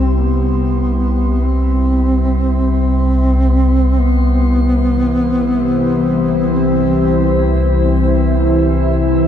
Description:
dark ambient drone; 47 BPM; 4/4; straight; C major; A4 = 439 Hz
dark duduk; melody; 0.0-8.7 s; B3 to C4; -17 LUFS; equal; shimmer reverb, tape echo
organ-like drone; drone; 0.0-9.3 s; C2 to E3; -14 LUFS; left 1 dB; ensemble chorus, built-in reverb
quartz singing bowl; texture; 0.0-4.0 s; G4; -34 LUFS; right 6 dB
dark analog pad; sustained chords; 4.6-9.3 s; E4 to E5; -18 LUFS; equal; chorus, shimmer reverb
moderate huge ambient reverb, RT60 7.8 s; dark, warm production; -12 LUFS; side -9 dB against mid
0.0-4.0 A section; 4.0-9.3 B section
filter sweep on synth drone 0.0-4.0
0.0 C5; 4.0 C
0.16 1.44 2.71 | 3.99 5.27 6.54 7.82 | 9.10

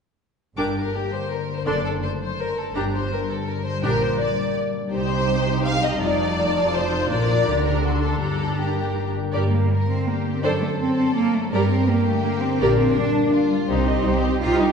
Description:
classical, dramatic, fast romantic movement for symphony orchestra; 165 BPM; 3/4; straight; G minor; A4 = 440 Hz
dark symphonic violin section; melody; 0.6-14.7 s; C5 to D6; -34 LUFS; left 2 dB
warm studio violin section; second line; 0.6-14.7 s; D4 to F5; -26 LUFS; left 2 dB
rich symphonic viola section; accompaniment; 0.6-14.7 s; D4 to C5; -27 LUFS; right 1 dB
concert harp; arpeggios; 0.6-14.7 s; F2 to A4; -26 LUFS; left 5 dB
rich symphonic cello section; bass; 0.6-14.7 s; F2 to F4; -25 LUFS; right 3 dB
rich symphonic double bass section; bass; 0.6-14.7 s; F1 to G2; -26 LUFS; right 1 dB
wet scoring stage reverb, RT60 1.6 s; heard from further back in the room, nothing above 11.0 kHz; -19 LUFS; side -6 dB against mid
0.6-9.3 A section; 9.3-14.7 A section
0.6 Gm; 1.7 D7/F#; 2.8 Gm; 3.8 Gm/Bb; 4.9 Cm; 6.0 F7; 7.1 Bb; 7.5 Gm/D; 7.8 D7; 8.2 Gm; 10.4 D7/F#; 11.5 Gm; 12.6 Gm/Bb; 13.7 Cm
| 0.57 0.94 1.30 | 1.67 2.03 2.39 | 2.75 3.11 3.47 | 3.83 4.20 4.56 | 4.92 5.28 5.64 | 6.01 6.37 6.73 | 7.10 7.47 7.84 | 8.22 8.59 8.97 | 9.34 9.71 10.07 | 10.44 10.80 11.16 | 11.53 11.88 12.24 | 12.61 12.96 13.33 | 13.69 14.05 14.41

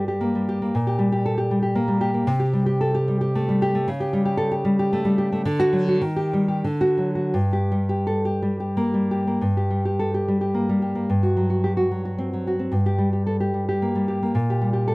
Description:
romantic piece for solo classical guitar; 81-119 BPM; 3/4; rubato; G minor; A4 = 441 Hz
nylon-string guitar; solo; 0.0-14.9 s; G2 to A4; -20 LUFS; equal
light reverb; dry, close 1970s-style studio recording; -20 LUFS; side -24 dB against mid
0.0-9.4 A section; 9.4-14.9 A section
0.0 Gm; 0.7 Gm/Bb; 2.3 Am7/C; 3.9 A7/C#; 5.5 D; 6.0 Eb; 6.6 D; 7.3 Gm; 11.1 Gsus4; 12.7 Gm; 14.3 Gm/Bb
0.17 | 0.72 1.24 1.75 | 2.28 2.82 3.37 | 3.90 4.42 4.96 | 5.48 6.04 6.65 | 7.35 8.06 8.75 | 9.41 9.98 10.53 | 11.08 11.62 12.18 | 12.72 13.26 13.81 | 14.35 14.86

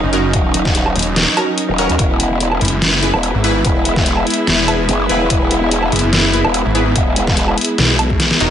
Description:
heavy wobble dubstep; 145 BPM; 4/4; swing 54% on 16ths, half-time; A4 = 440 Hz
rich studio string section; sustained chords; 0.0-8.5 s; Gb3 to E4; -21 LUFS; right 1 dB; sidechain pumping
snarling distorted saw bass; bass; 0.0-8.5 s; Eb1 to B1; -17 LUFS; equal; overdrive
airy breathy pad; texture; 0.0-8.5 s; B3 to E5; -23 LUFS; equal; chorus, sidechain pumping
orchestra-hit-like synth stab; stabs; 0.1-8.5 s; Db4 to B4; -22 LUFS; equal; built-in reverb, tape echo
dubstep drum kit; drums; 0.1-8.5 s; hi-hat, snare drum, woodblock; -17 LUFS; equal
growl bass; bass; 0.3-7.6 s; Eb1 to Eb2; -18 LUFS; equal; chorus, overdrive
electronic kick drum; drums; 0.3-8.2 s; -18 LUFS; equal
light reverb; nothing above 10.9 kHz; -12 LUFS; side -10 dB against mid
0.0-8.5 A section
drum fill 8.2-8.5
0.0 Ebm7; 2.0 E
| 0.34 0.75 1.16 1.58 | 1.99 2.40 2.82 3.23 | 3.65 4.06 4.47 4.89 | 5.30 5.71 6.13 6.54 | 6.96 7.37 7.78 8.20

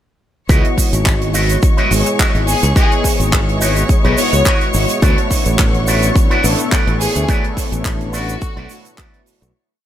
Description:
nu-disco, nu disco; 106 BPM; 4/4; swing 54% on 16ths; C# minor; A4 = 438 Hz
mellow synth brass; accompaniment; 0.5-9.5 s; G#3 to D#5; -21 LUFS; left 1 dB; chorus, sidechain pumping, digital delay
clear symphonic string section; sustained chords; 0.5-9.6 s; C#5 to C#6; -24 LUFS; left 1 dB; sidechain pumping
electric guitar with an envelope filter; riff; 0.5-9.4 s; E4 to D#5; -22 LUFS; equal; wide subtle chorus, digital delay
modern bright fingered electric bass; bass; 0.5-9.5 s; G#1 to D2; -17 LUFS; equal; sidechain pumping
compact cocktail drum kit; drums; 0.5-9.5 s; handclaps, hi-hat, shaker; -21 LUFS; right 2 dB
electronic kick drum; drums; 0.5-9.1 s; -15 LUFS; equal
warm symphonic violin section; melody; 2.5-8.9 s; F#4 to C#5; -22 LUFS; left 1 dB; digital delay
light reverb, studio reverb; -12 LUFS; side -11 dB against mid
0.5-9.6 drop
drop 0.5-9.6; fade-out 6.5-9.6
0.5 C#m11; 5.0 D69
| 0.49 1.06 1.63 2.19 | 2.76 3.33 3.89 4.46 | 5.02 5.59 6.16 6.72 | 7.29 7.85 8.42 8.99

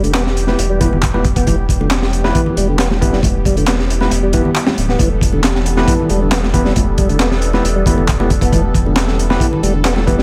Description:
breakbeat, breaks; 136 BPM; 4/4; straight; E minor; A4 = 438 Hz
phased analog pad; sustained chords; 0.0-10.2 s; E3 to A4; -25 LUFS; equal; phaser, chorus, sidechain pumping
tonewheel organ; riff; 0.0-10.2 s; D3 to B3; -23 LUFS; equal; overdrive, fast rotary speaker, delay
saturated sub bass; bass; 0.0-10.2 s; D1 to E1; -20 LUFS; equal
crunchy breakbeat drum kit; drums; 0.0-10.2 s; hi-hat, kick drum, snare drum; -19 LUFS; equal
congas; percussion; 0.0-10.0 s; -26 LUFS; equal
electronic handclaps; drums; 0.1-9.9 s; -25 LUFS; equal; overdrive
overdriven tine electric piano; stabs; 0.5-10.2 s; B3 to B4; -24 LUFS; equal; delay
studio ambience; -14 LUFS; mono
0.0-10.2 A section
0.0 Em
0.14 0.59 1.03 | 1.47 1.91 2.35 2.79 | 3.23 3.67 4.12 4.56 | 5.00 5.44 5.88 6.32 | 6.76 7.20 7.64 8.09 | 8.53 8.97 9.41 9.85

